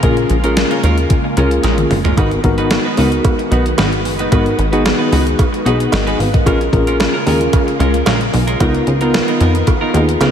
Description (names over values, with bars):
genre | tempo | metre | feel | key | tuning
early-eighties boogie funk | 112 BPM | 4/4 | straight | G# dorian | A4 = 440 Hz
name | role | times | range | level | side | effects
tine electric piano | accompaniment | 0.0-10.3 s | B3 to G#5 | -18 LUFS | left 2 dB | medium tremolo, slapback echo
string machine, full ensemble | sustained chords | 0.0-10.3 s | C#3 to A#4 | -21 LUFS | equal | ensemble chorus
clean electric guitar | riff | 0.0-10.3 s | G#3 to B4 | -21 LUFS | right 3 dB | wide subtle chorus, slapback echo
plucky analog bass | bass | 0.0-10.3 s | F#1 to E#2 | -16 LUFS | equal | none
crisp 8-bit digital drum machine | drums | 0.0-10.3 s | hi-hat, kick drum, snare drum, toms | -18 LUFS | equal | none
cowbell | percussion | 2.2-10.3 s | none | -25 LUFS | right 6 dB | slapback echo
room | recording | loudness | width
light reverb | none | -12 LUFS | side -8 dB against mid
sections
0.0-10.3 A section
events
drum fill 1.6-2.2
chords
0.0 A#m7; 2.2 G#m7; 6.5 A#m7; 8.6 C#13